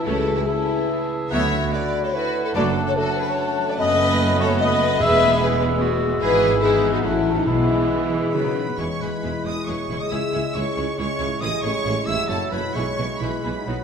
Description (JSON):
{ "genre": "classical, dramatic, fast romantic movement for symphony orchestra", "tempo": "128-151 BPM", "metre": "3/4", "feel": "rubato", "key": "E major from 3.8 s", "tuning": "A4 = 440 Hz", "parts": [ { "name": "warm symphonic violin section", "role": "melody", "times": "0.0-13.8 s", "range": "D#4 to E6", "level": "-31 LUFS", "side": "left 1 dB", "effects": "none" }, { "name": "clear clarinet", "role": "second line", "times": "0.0-13.8 s", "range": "B3 to G#4", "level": "-32 LUFS", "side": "right 1 dB", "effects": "none" }, { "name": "clear oboe", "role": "second line", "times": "0.0-13.8 s", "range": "A4 to F#5", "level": "-32 LUFS", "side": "right 1 dB", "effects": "none" }, { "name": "mellow large flute ensemble", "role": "second line", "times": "0.0-13.8 s", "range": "A4 to B5", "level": "-31 LUFS", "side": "equal", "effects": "none" }, { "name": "rich symphonic violin section", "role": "second line", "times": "0.0-13.8 s", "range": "B3 to C#5", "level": "-31 LUFS", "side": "left 1 dB", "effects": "none" }, { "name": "mellow bassoon", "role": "accompaniment", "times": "0.0-13.8 s", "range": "E3 to A3", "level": "-30 LUFS", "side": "right 4 dB", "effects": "none" }, { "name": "mellow French horn section", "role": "sustained chords", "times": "0.0-13.8 s", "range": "F#3 to E5", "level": "-24 LUFS", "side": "left 3 dB", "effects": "none" }, { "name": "concert harp", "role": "arpeggios", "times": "0.0-13.8 s", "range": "E2 to A4", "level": "-29 LUFS", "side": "left 8 dB", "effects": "none" }, { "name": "rich symphonic viola section", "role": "accompaniment", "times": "0.1-13.8 s", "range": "D#3 to E4", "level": "-30 LUFS", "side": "right 2 dB", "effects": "none" }, { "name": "rich symphonic cello section", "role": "bass", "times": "0.1-13.8 s", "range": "C#2 to E3", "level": "-30 LUFS", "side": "right 4 dB", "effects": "none" }, { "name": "rich symphonic double bass section", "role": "bass", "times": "0.1-13.8 s", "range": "E1 to D2", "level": "-30 LUFS", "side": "right 4 dB", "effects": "none" }, { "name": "timpani", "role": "percussion", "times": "5.0-8.1 s", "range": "E2 to B2", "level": "-29 LUFS", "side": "left 3 dB", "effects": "none" }, { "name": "mellow tuba", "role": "bass", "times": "8.8-13.8 s", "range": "E1 to C#2", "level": "-32 LUFS", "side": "right 5 dB", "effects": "none" } ], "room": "wet scoring stage reverb, RT60 1.7 s", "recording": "none", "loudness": "-19 LUFS", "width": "side -6 dB against mid", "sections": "0.0-8.8 A section; 8.8-13.8 B section", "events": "none", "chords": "0.1 A/C#; 1.3 D6; 2.6 D/F#; 3.8 B7/F#; 5.0 E; 6.2 E/G#; 7.0 F#m7/A; 7.5 E/B; 8.4 B; 8.8 E; 10.1 C#m; 11.4 Amaj7; 12.3 F#m7; 12.8 E/B" }